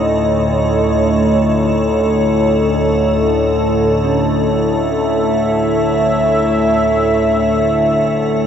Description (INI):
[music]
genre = dark ambient drone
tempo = free time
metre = none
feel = none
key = unclear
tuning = A4 = 440 Hz
[part]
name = dark analog pad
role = sustained chords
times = 0.0-8.5 s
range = A4 to E5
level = -16 LUFS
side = equal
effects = chorus
[part]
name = overtone-sweeping drone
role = drone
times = 0.0-8.5 s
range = D2 to A2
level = -17 LUFS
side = equal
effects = chorus, built-in reverb
[part]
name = icy glass pad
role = texture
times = 0.0-8.5 s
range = A3 to A4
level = -20 LUFS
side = equal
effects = chorus, built-in reverb
[part]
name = dark detuned synth bell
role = arpeggios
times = 4.0-8.5 s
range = C#4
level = -30 LUFS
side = right 1 dB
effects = none
[sound]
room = wet cathedral reverb, RT60 5.2 s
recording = in a vast, echoing space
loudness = -12 LUFS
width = side -8 dB against mid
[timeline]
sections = 0.0-8.5 A section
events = none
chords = 0.0 A